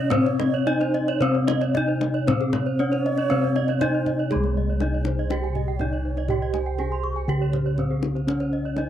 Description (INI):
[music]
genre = Balinese gamelan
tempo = 108-121 BPM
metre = 4/4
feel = straight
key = C pelog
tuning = A4 = 441 Hz
[part]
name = gamelan-type bronze metallophone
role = melody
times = 0.0-8.9 s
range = Ab3-20c to Ab4-20c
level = -26 LUFS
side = left 1 dB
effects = none
[part]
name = breathy xiao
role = second line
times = 0.0-8.9 s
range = C5 to Eb5-32c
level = -33 LUFS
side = right 7 dB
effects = none
[part]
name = gamelan-type bronze metallophone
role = arpeggios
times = 0.0-8.8 s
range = Ab4-20c to C6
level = -32 LUFS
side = right 9 dB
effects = none
[part]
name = gamelan-type bossed gongs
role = bass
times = 0.0-8.8 s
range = C2 to Ab4-20c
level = -25 LUFS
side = equal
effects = none
[part]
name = gamelan-type bronze metallophone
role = arpeggios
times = 0.1-8.9 s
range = G4-30c to Db6+20c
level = -30 LUFS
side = left 5 dB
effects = none
[part]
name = kendang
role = percussion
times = 0.1-8.9 s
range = none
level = -31 LUFS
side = left 4 dB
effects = none
[sound]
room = little or no reverb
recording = dry, close 1970s-style studio recording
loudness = -21 LUFS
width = side -10 dB against mid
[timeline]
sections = 0.0-4.3 A section; 4.3-8.9 B section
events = none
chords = none